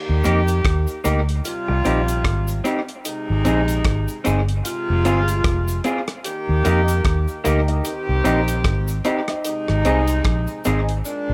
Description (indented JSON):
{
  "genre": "roots reggae",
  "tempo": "75 BPM",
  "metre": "4/4",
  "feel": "swing 58% on 16ths",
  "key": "unclear",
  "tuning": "A4 = 437 Hz",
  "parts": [
    { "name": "warm horn section", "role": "second line", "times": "0.0-11.3 s", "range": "Bb2 to G4", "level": "-27 LUFS", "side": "equal", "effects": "dub echo" },
    { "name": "vintage muted fingered electric bass", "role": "bass", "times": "0.1-11.3 s", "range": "F1 to F2", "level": "-22 LUFS", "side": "equal", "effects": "none" },
    { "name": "electric guitar through a small old amp", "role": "accompaniment", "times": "0.2-10.8 s", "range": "Bb3 to Ab4", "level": "-26 LUFS", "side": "equal", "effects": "dub echo" },
    { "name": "cabasa", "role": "percussion", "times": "0.2-11.3 s", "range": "none", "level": "-38 LUFS", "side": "equal", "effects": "none" },
    { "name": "damped 70s drum kit", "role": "drums", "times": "0.3-11.0 s", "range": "hi-hat, kick drum, rim click", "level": "-27 LUFS", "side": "equal", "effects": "dub echo" },
    { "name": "warm grand piano", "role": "stabs", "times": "6.6-11.0 s", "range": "Eb4 to Eb5", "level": "-29 LUFS", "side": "equal", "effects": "none" }
  ],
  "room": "light reverb",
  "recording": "none",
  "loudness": "-20 LUFS",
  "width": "mono",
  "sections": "0.0-11.3 A section",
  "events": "drum fill 11.1",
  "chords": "0.0 Eb; 1.4 Cm; 3.0 Ab; 4.6 Fm; 6.2 Eb; 7.8 Cm; 9.4 Ab"
}